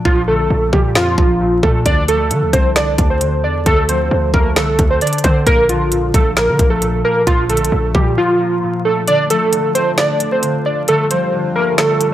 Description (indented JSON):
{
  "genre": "hip hop, trap",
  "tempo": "133 BPM",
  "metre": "4/4",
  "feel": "half-time",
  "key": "D minor",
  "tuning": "A4 = 442 Hz",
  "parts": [
    { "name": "concert harp", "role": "accompaniment", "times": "0.0-12.1 s", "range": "Bb2 to D5", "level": "-20 LUFS", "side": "left 1 dB", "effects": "none" },
    { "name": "warbly lo-fi synth keys", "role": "melody", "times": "0.1-12.1 s", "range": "F4 to D5", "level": "-15 LUFS", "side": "right 1 dB", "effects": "chorus" },
    { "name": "hard-hitting 808-style bass", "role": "bass", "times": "0.1-8.2 s", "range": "Bb1 to D3", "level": "-18 LUFS", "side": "equal", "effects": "none" },
    { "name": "trap drum kit", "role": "drums", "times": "0.1-12.1 s", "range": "hi-hat, kick drum, snare drum", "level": "-16 LUFS", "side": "equal", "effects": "none" },
    { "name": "warm analog pad", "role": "sustained chords", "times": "9.1-12.1 s", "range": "D3 to F4", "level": "-24 LUFS", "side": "left 2 dB", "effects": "chorus" }
  ],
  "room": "light reverb, digital ambience",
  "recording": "vinyl crackle",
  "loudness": "-12 LUFS",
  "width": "side -12 dB against mid",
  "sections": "0.0-12.1 A section",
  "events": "break 0.1-1.9; drums muted 8.2-9.1; kick muted 9.1-12.1",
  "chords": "0.0 Bb; 1.9 Dm; 5.5 Bb; 9.1 Dm"
}